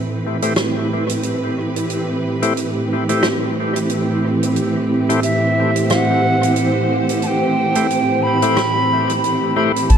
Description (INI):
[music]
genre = ambient dub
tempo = 90 BPM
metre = 4/4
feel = swing 59% on 16ths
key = A dorian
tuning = A4 = 439 Hz
[part]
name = rich studio string section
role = sustained chords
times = 0.0-10.0 s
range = A2 to C5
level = -18 LUFS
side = right 1 dB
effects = none
[part]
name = overdriven tonewheel organ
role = stabs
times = 0.4-9.7 s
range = A3 to C5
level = -24 LUFS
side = left 3 dB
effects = slow rotary speaker, low-pass filter, dub echo
[part]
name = soft-mallet drum kit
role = drums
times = 0.4-10.0 s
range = hi-hat, rim click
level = -25 LUFS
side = right 2 dB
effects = dub echo
[part]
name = bright wooden flute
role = melody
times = 5.2-10.0 s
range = E5 to B5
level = -19 LUFS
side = right 1 dB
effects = dub echo
[part]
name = soft dub sub bass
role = bass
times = 9.9-10.0 s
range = A1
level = -8 LUFS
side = equal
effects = tube saturation
[sound]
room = moderate huge ambient reverb, RT60 4.7 s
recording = dark, warm production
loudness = -15 LUFS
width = side -8 dB against mid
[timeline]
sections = 0.0-9.9 A section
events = none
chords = 0.0 Am7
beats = 0.56 1.23 | 1.90 2.56 3.23 3.90 | 4.56 5.23 5.90 6.56 | 7.23 7.90 8.56 9.23 | 9.90